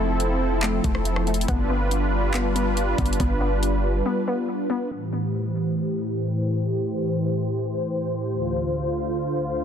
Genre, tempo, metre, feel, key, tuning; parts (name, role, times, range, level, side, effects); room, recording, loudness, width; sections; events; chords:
hip hop, atmospheric cloud-rap; 140 BPM; 4/4; half-time; A minor; A4 = 436 Hz
warm analog pad; sustained chords; 0.0-9.6 s; D2 to C5; -24 LUFS; equal; chorus, sidechain pumping, low-pass filter
warbly dusty pluck; arpeggios; 0.0-4.9 s; A3 to B3; -30 LUFS; left 4 dB; chorus, tape echo
warm 808-style bass; bass; 0.0-4.0 s; F1 to G1; -25 LUFS; equal
smooth R&B drum kit; drums; 0.2-3.7 s; handclaps, hi-hat, kick drum, rim click; -27 LUFS; equal
digital ambience; dense, heavily limited modern master; -22 LUFS; side -8 dB against mid
0.0-4.9 A section; 4.9-9.6 B section
break 4.1-4.9
0.0 Fmaj7; 1.5 G7; 4.9 Am7; 8.3 Dm7